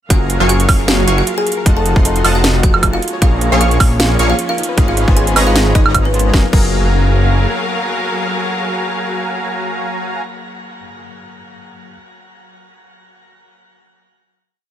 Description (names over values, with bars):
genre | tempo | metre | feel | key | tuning
future bass | 154 BPM | 4/4 | swing 55% on 16ths, half-time | F# major | A4 = 440 Hz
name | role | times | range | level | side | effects
buzzing kalimba | melody | 0.1-10.8 s | B3 to A5 | -22 LUFS | right 1 dB | sidechain pumping, tape echo
bell-like tine electric piano | accompaniment | 0.1-12.0 s | D#3 to E#5 | -26 LUFS | left 4 dB | medium stereo tremolo, sidechain pumping
clear symphonic string section | sustained chords | 0.1-10.2 s | E#3 to E#5 | -26 LUFS | left 1 dB | sidechain pumping
soft round pluck | arpeggios | 0.1-6.6 s | Eb4 to C#5 | -30 LUFS | left 4 dB | none
supersaw stab | riff | 0.1-10.2 s | F3 to C#6 | -20 LUFS | right 1 dB | sidechain pumping
wide detuned saw bass | bass | 0.1-7.5 s | F1 to A#1 | -15 LUFS | equal | chorus, tube saturation, sidechain pumping
electronic kick drum | drums | 0.1-6.7 s | none | -12 LUFS | equal | overdrive
trap drum kit | drums | 0.1-6.7 s | crash cymbal, hi-hat, snare drum, woodblock | -17 LUFS | right 2 dB | overdrive
room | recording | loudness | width
little or no reverb | none | -12 LUFS | side -11 dB against mid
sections
0.1-6.3 drop; 6.3-9.5 final chord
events
drop 0.1-6.3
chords
0.1 F#maj9; 1.7 F7b9; 3.0 A#m7; 4.6 C#9/G#; 6.3 F#maj9